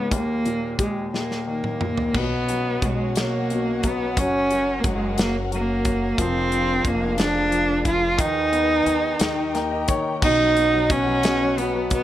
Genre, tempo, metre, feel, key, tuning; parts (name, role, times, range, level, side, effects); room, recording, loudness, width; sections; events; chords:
six-eight pop ballad; 59 BPM (dotted quarters); 6/8; straight; A4 = 440 Hz
warm cello; melody; 0.0-12.0 s; G#3 to E#4; -22 LUFS; right 1 dB
warm grand piano; accompaniment; 0.0-12.0 s; C#2 to G5; -27 LUFS; left 3 dB
modern studio drum kit; drums; 0.1-12.0 s; crash cymbal, hi-hat, kick drum, snare drum, toms; -26 LUFS; equal
dark studio string section; sustained chords; 2.1-12.0 s; C#4 to G#5; -31 LUFS; left 1 dB
upright bass; bass; 2.1-12.0 s; E#1 to D#2; -30 LUFS; equal
light reverb, small room reverb; -19 LUFS; side -13 dB against mid
0.0-2.1 A section; 2.1-10.2 B section; 10.2-12.0 C section
drum fill 1.1-2.1; grand piano fill 9.2-10.2
0.1 D#; 2.1 Bsus2; 4.2 F#; 6.2 A#7/E#; 8.2 G#m/D#; 9.2 D#; 10.2 Bsus2